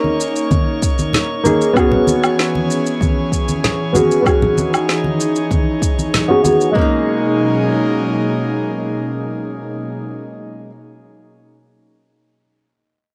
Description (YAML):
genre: sunset chillout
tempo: 96 BPM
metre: 4/4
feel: straight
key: B major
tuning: A4 = 441 Hz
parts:
  - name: nylon-string guitar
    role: accompaniment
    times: 0.0-10.7 s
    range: G#3 to G#4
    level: -20 LUFS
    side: equal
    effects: low-pass filter, tape echo
  - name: airy breathy pad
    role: sustained chords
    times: 0.0-10.0 s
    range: B2 to G#4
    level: -23 LUFS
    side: equal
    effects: chorus
  - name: congas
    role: percussion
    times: 0.0-6.6 s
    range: none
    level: -24 LUFS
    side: equal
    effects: none
  - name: drifting glass-harmonics texture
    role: texture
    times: 0.0-6.8 s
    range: C#5 to C#6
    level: -30 LUFS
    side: equal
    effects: chorus, built-in reverb
  - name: electronic shaker, snare drum and woodblock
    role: drums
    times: 0.2-6.7 s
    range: none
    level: -23 LUFS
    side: equal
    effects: cassette tape
  - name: electronic kick drum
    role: drums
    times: 0.5-6.9 s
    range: none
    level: -20 LUFS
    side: equal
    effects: cassette tape
room: moderate studio reverb, RT60 0.5 s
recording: home recording on cassette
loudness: -16 LUFS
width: mono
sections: 0.0-6.8 A section; 6.8-9.3 B section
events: filter sweep on nylon-string guitar 0.0-6.8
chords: 0.0 G#sus24/A#; 1.8 E6; 6.8 Bmaj13